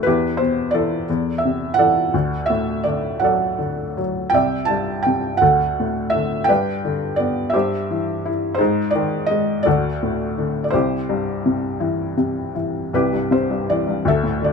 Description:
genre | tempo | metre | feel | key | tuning
classical, lyrical solo piano | 56 BPM (dotted quarters) | 6/8 | rubato | C lydian | A4 = 441 Hz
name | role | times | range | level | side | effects
felt-muted upright piano | solo | 0.0-14.5 s | C2 to A5 | -18 LUFS | equal | none
room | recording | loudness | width
light reverb | close, detailed microphones | -18 LUFS | side -5 dB against mid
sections
0.0-12.9 A section; 12.9-14.5 B section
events
none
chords
0.1 Em; 1.1 Am/E; 2.1 D; 4.3 Cadd9; 5.4 D; 6.5 G; 7.5 C/G; 8.6 Ab5; 9.7 D; 10.7 C

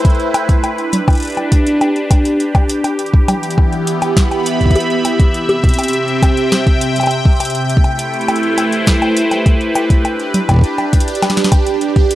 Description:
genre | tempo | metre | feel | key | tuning
IDM | 102 BPM | 4/4 | straight | A minor | A4 = 440 Hz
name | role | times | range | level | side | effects
phased analog pad | sustained chords | 0.0-12.2 s | C3 to B5 | -16 LUFS | equal | phaser, chorus
booming analog drum machine | drums | 0.0-12.2 s | bongos, congas, hi-hat, snare drum | -18 LUFS | left 1 dB | tape echo
electronic kick drum | drums | 0.0-12.1 s | none | -11 LUFS | equal | none
pulsing gated texture | texture | 8.2-12.2 s | G4 | -25 LUFS | right 4 dB | chorus, built-in reverb
room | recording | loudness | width
digital ambience | dry, gritty hardware recording | -12 LUFS | side -14 dB against mid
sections
0.0-12.2 A section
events
none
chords
0.0 Am7; 0.6 G; 3.0 Em; 5.3 C; 7.7 Am7; 10.0 G

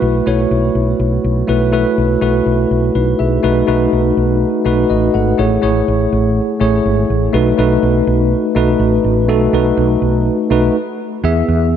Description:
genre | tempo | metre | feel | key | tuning
1980s-style pop | 123 BPM | 4/4 | straight | unclear | A4 = 437 Hz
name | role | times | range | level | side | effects
bell-like tine electric piano | accompaniment | 0.0-11.8 s | A3 to F#5 | -14 LUFS | equal | medium stereo tremolo
woody fretless electric bass | bass | 0.0-11.7 s | G#1 to E2 | -16 LUFS | equal | none
room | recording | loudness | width
moderate lush hall reverb, RT60 2.8 s | none | -12 LUFS | side -9 dB against mid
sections
0.0-3.4 A section; 3.4-11.2 B section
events
stop 10.8-11.2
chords
0.0 B7sus4; 3.4 B7; 5.4 Amaj7; 7.3 B7; 11.2 E

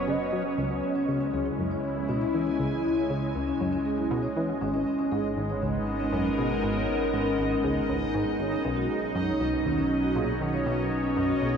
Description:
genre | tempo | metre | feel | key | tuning
ambient, sequencer-driven space music | 119 BPM | 4/4 | straight | C# dorian | A4 = 440 Hz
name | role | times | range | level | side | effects
expressive synth lead | melody | 0.0-0.6 s | D#5 | -37 LUFS | right 1 dB | ensemble chorus, analog delay
evolving wavetable pad | sustained chords | 0.0-11.6 s | F#3 to G#5 | -29 LUFS | equal | chorus, built-in reverb
analog drone | bass | 0.0-11.6 s | F#1 to C#2 | -37 LUFS | equal | chorus
bubbling stepped-filter texture | texture | 0.0-11.6 s | D#5 to D#6 | -39 LUFS | left 4 dB | chorus, built-in reverb
plucky analog bass | riff | 0.1-11.6 s | G#1 to F#3 | -32 LUFS | equal | analog chorus, analog delay
vibraphone with soft mallets | arpeggios | 0.6-11.6 s | C#4 to C#5 | -30 LUFS | equal | auto-pan, analog delay
room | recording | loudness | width
wet huge ambient reverb, RT60 7.6 s | none | -25 LUFS | side -7 dB against mid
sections
0.0-11.6 A section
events
none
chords
0.0 F#sus4; 0.6 C#m; 4.6 G#madd9; 8.6 Badd9

